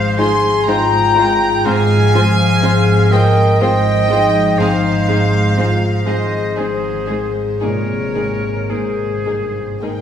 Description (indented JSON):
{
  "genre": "cinematic, emotional film score for orchestra",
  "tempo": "52-62 BPM",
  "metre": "3/4",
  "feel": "rubato",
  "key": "Ab major",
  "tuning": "A4 = 440 Hz",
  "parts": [
    { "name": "warm symphonic violin section", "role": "melody", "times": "0.0-10.0 s", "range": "C5 to C6", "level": "-23 LUFS", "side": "left 4 dB", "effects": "none" },
    { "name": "clear oboe", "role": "second line", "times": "0.0-9.8 s", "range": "Ab4 to Ab5", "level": "-21 LUFS", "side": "right 3 dB", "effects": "none" },
    { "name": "mellow hollow silver concert flute", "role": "second line", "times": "0.0-9.8 s", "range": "C5 to C6", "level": "-22 LUFS", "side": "left 1 dB", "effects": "none" },
    { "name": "clear grand piano", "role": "accompaniment", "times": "0.0-10.0 s", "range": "Ab2 to C5", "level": "-22 LUFS", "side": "equal", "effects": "none" },
    { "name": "mellow French horn section", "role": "sustained chords", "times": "0.0-10.0 s", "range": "Eb4 to C5", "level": "-21 LUFS", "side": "left 4 dB", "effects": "none" },
    { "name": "concert harp", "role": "arpeggios", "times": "0.0-10.0 s", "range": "Ab2 to C6", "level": "-24 LUFS", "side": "left 4 dB", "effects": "none" },
    { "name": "warm symphonic cello section", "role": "bass", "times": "0.0-10.0 s", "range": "G2 to Ab2", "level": "-21 LUFS", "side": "right 2 dB", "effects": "none" },
    { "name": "warm symphonic double bass section", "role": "bass", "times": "0.0-10.0 s", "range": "Ab1", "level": "-21 LUFS", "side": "right 2 dB", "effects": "none" },
    { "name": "warm symphonic violin section", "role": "second line", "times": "0.2-9.9 s", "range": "Eb4 to C5", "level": "-28 LUFS", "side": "left 1 dB", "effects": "none" },
    { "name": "warm studio viola section", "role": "accompaniment", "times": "0.2-9.9 s", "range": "Ab3 to Ab4", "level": "-26 LUFS", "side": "equal", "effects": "none" }
  ],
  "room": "wet scoring stage reverb, RT60 1.9 s",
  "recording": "heard from further back in the room",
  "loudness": "-13 LUFS",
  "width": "side -9 dB against mid",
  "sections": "0.0-10.0 A section",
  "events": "none",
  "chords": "0.0 Ab6; 1.6 Fm/Ab; 4.6 Ab6; 7.6 Abadd9",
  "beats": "0.66 | 1.64 2.61 3.60 | 4.58 5.56 6.56 | 7.62 8.70 9.82"
}